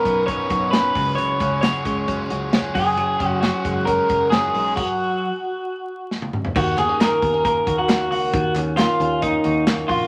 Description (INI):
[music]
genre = jangly indie pop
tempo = 134 BPM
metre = 4/4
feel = straight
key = unclear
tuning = A4 = 441 Hz
[part]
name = electric guitar through a small old amp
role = melody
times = 0.0-10.1 s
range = D#4 to C#5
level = -22 LUFS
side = equal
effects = spring reverb
[part]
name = crunchy overdriven guitar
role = accompaniment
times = 0.0-5.3 s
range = B2 to B4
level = -32 LUFS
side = equal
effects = none
[part]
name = direct-recorded clean electric guitar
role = arpeggios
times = 0.0-10.1 s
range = B2 to F#4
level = -29 LUFS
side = equal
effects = none
[part]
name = picked electric bass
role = bass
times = 0.1-10.1 s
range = F#1 to D#2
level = -31 LUFS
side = equal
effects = none
[part]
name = modern studio drum kit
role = drums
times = 0.1-10.0 s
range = crash cymbal, hi-hat, kick drum, snare drum, toms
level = -26 LUFS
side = equal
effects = none
[part]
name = group handclap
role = percussion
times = 6.8-9.8 s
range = none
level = -36 LUFS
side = equal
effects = none
[sound]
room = moderate studio reverb, RT60 0.6 s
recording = vinyl crackle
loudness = -20 LUFS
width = mono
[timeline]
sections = 0.0-6.6 A section; 6.6-10.1 B section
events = stop 4.8-6.6; drum fill 6.1-6.6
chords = 0.0 Badd9; 1.0 C#sus4; 2.8 F#sus2; 4.8 N.C.; 6.6 D#m7